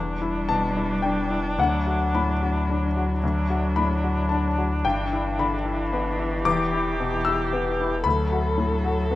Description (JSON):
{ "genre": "neoclassical piano and strings", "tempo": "111 BPM", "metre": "3/4", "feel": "rubato", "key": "E minor", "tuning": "A4 = 440 Hz", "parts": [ { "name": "clear cello", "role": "second line", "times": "0.0-9.2 s", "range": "E3 to G3", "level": "-30 LUFS", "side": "right 1 dB", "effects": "none" }, { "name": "bright baby grand piano", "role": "accompaniment", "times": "0.0-9.2 s", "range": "D2 to E6", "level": "-25 LUFS", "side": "left 4 dB", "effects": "none" }, { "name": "rich viola", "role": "accompaniment", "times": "0.0-9.2 s", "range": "D4 to A4", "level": "-29 LUFS", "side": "right 1 dB", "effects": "none" }, { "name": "pure sine sub bass", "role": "bass", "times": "0.0-9.2 s", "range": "E1 to D2", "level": "-28 LUFS", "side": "left 1 dB", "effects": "none" } ], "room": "little or no reverb", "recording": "rough home demo mix", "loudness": "-21 LUFS", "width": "side -15 dB against mid", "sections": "0.0-9.2 A section", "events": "none", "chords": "0.0 Em7; 1.6 D; 4.8 G6; 6.5 Em7; 8.0 Bm7/D" }